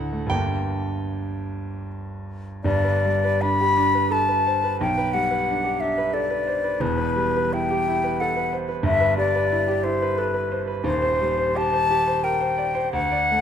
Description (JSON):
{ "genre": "classical, romantic duo for flute and grand piano", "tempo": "75-93 BPM", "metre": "3/4", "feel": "rubato", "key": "G major", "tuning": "A4 = 437 Hz", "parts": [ { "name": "clear grand piano", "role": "accompaniment", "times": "0.0-13.4 s", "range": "Eb1 to G5", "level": "-24 LUFS", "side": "right 3 dB", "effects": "none" }, { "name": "mellow silver concert flute", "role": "melody", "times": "2.6-13.4 s", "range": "B4 to B5", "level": "-22 LUFS", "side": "left 4 dB", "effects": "none" } ], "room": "moderate scoring stage reverb, RT60 1.5 s", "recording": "none", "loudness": "-20 LUFS", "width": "side -8 dB against mid", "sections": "0.0-2.6 A section; 2.6-13.4 B section", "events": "none", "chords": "0.3 Gm; 2.6 G; 4.8 G/B; 6.8 Em; 8.9 Em/G; 10.8 Cm/Eb" }